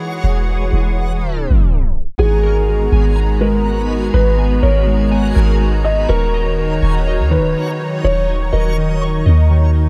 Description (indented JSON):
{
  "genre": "hip hop",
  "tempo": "123 BPM",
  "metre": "4/4",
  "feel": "half-time",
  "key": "G# minor",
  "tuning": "A4 = 441 Hz",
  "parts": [
    { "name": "hollow soft pad", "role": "sustained chords", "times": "0.0-9.9 s", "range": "D#3 to A#5", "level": "-25 LUFS", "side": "equal", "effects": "ensemble chorus" },
    { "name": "backwards swelling texture", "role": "texture", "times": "0.0-9.9 s", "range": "F#3 to C#5", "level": "-30 LUFS", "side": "equal", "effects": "built-in reverb" },
    { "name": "soft 808-style bass", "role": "bass", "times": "0.2-9.9 s", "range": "D#1 to E2", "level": "-17 LUFS", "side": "equal", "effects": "none" },
    { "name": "felt-muted upright piano", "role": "melody", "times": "2.2-9.9 s", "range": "G#4 to D#5", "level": "-23 LUFS", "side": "equal", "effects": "low-pass filter, delay" },
    { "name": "glassy digital keys", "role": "arpeggios", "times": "2.2-9.9 s", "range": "D#3 to C#6", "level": "-26 LUFS", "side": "equal", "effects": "chorus, low-pass filter, delay" }
  ],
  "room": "little or no reverb",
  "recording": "tape stop",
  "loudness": "-15 LUFS",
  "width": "mono",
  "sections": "0.0-2.2 A section; 2.2-9.9 B section",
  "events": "tape stop 1.2-2.2",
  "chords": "0.0 E69; 2.2 G#m9; 6.1 D#m7",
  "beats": "| 0.24 0.73 1.22 1.70 | 2.19 2.68 3.17 3.65 | 4.14 4.63 5.12 5.61 | 6.09 6.58 7.07 7.56 | 8.04 8.53 9.02 9.51"
}